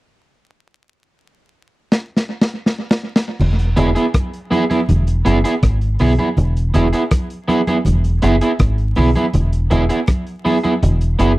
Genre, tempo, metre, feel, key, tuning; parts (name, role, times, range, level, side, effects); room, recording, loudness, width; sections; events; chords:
roots reggae; 81 BPM; 4/4; straight; E major; A4 = 440 Hz
crunchy breakbeat drum kit; drums; 1.9-11.4 s; crash cymbal, hi-hat, kick drum, rim click, snare drum; -18 LUFS; equal; tape echo
deep dub fingered electric bass; bass; 3.4-11.4 s; E1 to B1; -15 LUFS; equal
congas; percussion; 3.4-11.0 s; -23 LUFS; right 1 dB
electric guitar at the edge of break-up; accompaniment; 3.8-11.3 s; B3 to G#4; -17 LUFS; right 2 dB; tape echo
little or no reverb; dry, close 1970s-style studio recording, vinyl crackle; -14 LUFS; side -18 dB against mid
0.4-3.4 A section; 3.4-11.4 B section
drum fill 1.9-3.4
0.4 N.C.; 3.4 E